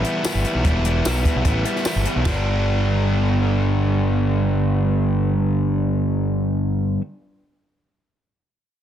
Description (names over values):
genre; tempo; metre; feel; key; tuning
indie rock; 148 BPM; 4/4; straight; G major; A4 = 440 Hz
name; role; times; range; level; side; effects
biting overdriven guitar; riff; 0.0-7.0 s; G2 to E4; -21 LUFS; equal; none
growling picked electric bass; bass; 0.0-7.0 s; E1 to B1; -21 LUFS; equal; overdrive
compact cocktail drum kit; drums; 0.0-2.4 s; hi-hat, kick drum, ride cymbal, snare drum, tambourine; -23 LUFS; equal; soft clipping on snare
room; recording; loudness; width
studio reverb; dense, heavily limited modern master; -18 LUFS; side -10 dB against mid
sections
0.0-2.3 A section; 2.3-5.5 B section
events
none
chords
0.0 Em; 2.3 G